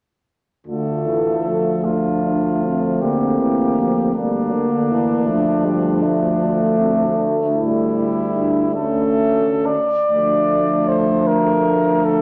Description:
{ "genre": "classical, hymn-like piece for brass band", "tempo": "43-54 BPM (dotted quarters)", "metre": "6/8", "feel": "rubato", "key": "D minor", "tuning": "A4 = 444 Hz", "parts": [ { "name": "mellow cornet", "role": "melody", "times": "0.7-12.2 s", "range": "D4 to D5", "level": "-24 LUFS", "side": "equal", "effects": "none" }, { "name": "mellow French horn section", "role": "second line", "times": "0.7-12.2 s", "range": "Bb3 to F4", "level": "-25 LUFS", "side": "equal", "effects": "none" }, { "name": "clear euphonium", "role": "accompaniment", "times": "0.7-12.2 s", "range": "G3 to Bb3", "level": "-24 LUFS", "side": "equal", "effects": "none" }, { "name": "clear trombone", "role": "accompaniment", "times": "0.7-12.2 s", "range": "D3 to A3", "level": "-27 LUFS", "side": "equal", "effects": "none" }, { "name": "warm tuba", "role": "bass", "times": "0.7-12.2 s", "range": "D2", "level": "-26 LUFS", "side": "equal", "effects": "none" } ], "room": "wet recital hall reverb, RT60 1.6 s", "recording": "none", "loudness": "-18 LUFS", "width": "mono", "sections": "0.7-10.1 A section; 10.1-12.2 B section", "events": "none", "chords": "0.7 Dm; 3.0 Gm/D; 5.3 Dm; 7.6 A7/D; 10.1 Dm" }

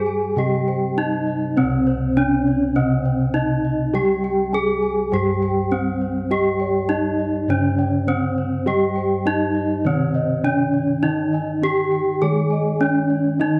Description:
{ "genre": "Javanese gamelan", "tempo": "102 BPM", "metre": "4/4", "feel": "straight", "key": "C pelog", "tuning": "A4 = 440 Hz", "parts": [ { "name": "gamelan-type bronze metallophone", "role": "melody", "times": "0.0-13.6 s", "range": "C4 to Ab4", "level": "-23 LUFS", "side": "equal", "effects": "none" }, { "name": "gamelan-type bronze metallophone", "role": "accompaniment", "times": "0.0-13.6 s", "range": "C3 to Ab3", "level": "-28 LUFS", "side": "equal", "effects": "none" }, { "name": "gamelan-type bossed gongs", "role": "arpeggios", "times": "0.0-13.6 s", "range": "C5 to Ab5", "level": "-33 LUFS", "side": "equal", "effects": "none" }, { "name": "gamelan-type bronze metallophone", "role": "arpeggios", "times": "0.0-13.6 s", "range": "C5 to Ab5", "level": "-34 LUFS", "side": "equal", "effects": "none" }, { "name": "gamelan-type bossed gongs", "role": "bass", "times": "0.0-13.6 s", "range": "C2 to G4", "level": "-26 LUFS", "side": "equal", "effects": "none" } ], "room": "moderate plate reverb, RT60 2.4 s", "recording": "none", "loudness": "-20 LUFS", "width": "mono", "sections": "0.0-1.6 A section; 1.6-13.6 B section", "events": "none", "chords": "none" }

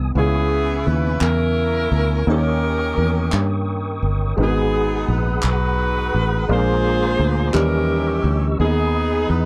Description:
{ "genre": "slow gospel", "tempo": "57 BPM (dotted quarters)", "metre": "6/8", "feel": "straight", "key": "G# minor", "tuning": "A4 = 444 Hz", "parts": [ { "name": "warm grand piano", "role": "accompaniment", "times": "0.0-9.5 s", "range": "G#2 to D#5", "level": "-26 LUFS", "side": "equal", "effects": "none" }, { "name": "mellow tonewheel organ", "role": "sustained chords", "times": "0.0-9.5 s", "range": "B3 to E6", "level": "-31 LUFS", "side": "equal", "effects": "fast rotary speaker, chorus vibrato" }, { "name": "fingered electric bass", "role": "bass", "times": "0.0-9.5 s", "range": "G1 to G2", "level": "-22 LUFS", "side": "equal", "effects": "none" }, { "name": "clear saxophone section", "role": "melody", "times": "0.2-9.5 s", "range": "B3 to B#4", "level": "-25 LUFS", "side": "equal", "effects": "none" }, { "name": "group handclap", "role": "percussion", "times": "1.2-7.9 s", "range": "none", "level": "-29 LUFS", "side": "equal", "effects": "none" } ], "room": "little or no reverb", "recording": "dry, close 1970s-style studio recording", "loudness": "-19 LUFS", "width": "mono", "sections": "0.0-9.5 A section", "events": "none", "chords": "0.2 C#m7; 2.3 D#7; 4.4 G#m7; 6.5 A#7; 7.5 D#7b9; 8.6 G#m/D#" }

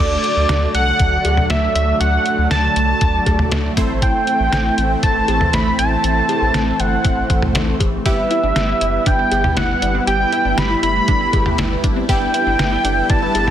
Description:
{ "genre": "synth-pop", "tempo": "119 BPM", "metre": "4/4", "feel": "straight", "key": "unclear", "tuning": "A4 = 440 Hz", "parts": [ { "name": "octave-doubled lead", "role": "melody", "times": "0.0-13.5 s", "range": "D5 to B5", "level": "-18 LUFS", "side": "right 1 dB", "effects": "chorus" }, { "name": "funky polysynth comp", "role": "accompaniment", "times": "0.0-13.5 s", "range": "G3 to D5", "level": "-23 LUFS", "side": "right 1 dB", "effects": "chorus" }, { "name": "lush unison pad", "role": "sustained chords", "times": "0.2-13.5 s", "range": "D3 to B4", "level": "-24 LUFS", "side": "equal", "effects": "chorus, phaser" }, { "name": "round analog bass", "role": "bass", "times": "0.0-13.5 s", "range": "F#1 to D2", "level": "-21 LUFS", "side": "equal", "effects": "none" }, { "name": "detuned 8-bit digital drum machine", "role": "drums", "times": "0.2-13.5 s", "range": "cowbell, hi-hat, kick drum, snare drum, toms", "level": "-20 LUFS", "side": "left 1 dB", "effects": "none" }, { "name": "analog pluck", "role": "arpeggios", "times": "8.1-13.5 s", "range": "C4 to G4", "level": "-27 LUFS", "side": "left 2 dB", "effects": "chorus, phaser, digital delay" } ], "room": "light reverb, digital ambience", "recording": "dense, heavily limited modern master", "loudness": "-14 LUFS", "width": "side -10 dB against mid", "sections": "0.0-13.5 A section", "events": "none", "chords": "0.0 D; 3.8 Am; 8.1 G6" }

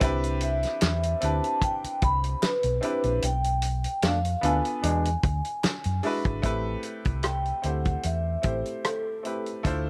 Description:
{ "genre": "lush 1970s-style soul", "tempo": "75 BPM", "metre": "4/4", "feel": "swing 54% on 16ths", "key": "A minor", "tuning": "A4 = 440 Hz", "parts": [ { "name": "clear baby grand piano", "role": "accompaniment", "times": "0.0-9.9 s", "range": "G#3 to C5", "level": "-34 LUFS", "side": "equal", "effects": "none" }, { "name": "hollow-body short-scale fingered electric bass", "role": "bass", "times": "0.0-9.9 s", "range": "G#1 to F#2", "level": "-30 LUFS", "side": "equal", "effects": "none" }, { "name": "warm soul drum kit", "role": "drums", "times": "0.0-9.9 s", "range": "hi-hat, kick drum, rim click, snare drum", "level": "-31 LUFS", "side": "equal", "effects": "none" }, { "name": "vibraphone with soft mallets", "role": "melody", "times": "0.4-9.4 s", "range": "A4 to B5", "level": "-31 LUFS", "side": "equal", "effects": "slapback echo" }, { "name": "group handclap", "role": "percussion", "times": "0.8-5.8 s", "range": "none", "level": "-40 LUFS", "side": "equal", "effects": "none" }, { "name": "warm trombone section", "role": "stabs", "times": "4.0-5.1 s", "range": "B2 to D4", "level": "-33 LUFS", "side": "equal", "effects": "none" } ], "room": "small room ambience", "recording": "none", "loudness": "-27 LUFS", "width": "mono", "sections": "0.0-6.4 A section; 6.4-9.9 B section", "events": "band accent 3.2-6.4", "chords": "0.0 Cmaj7; 3.2 Bm7b5; 4.8 E7; 6.4 Am7" }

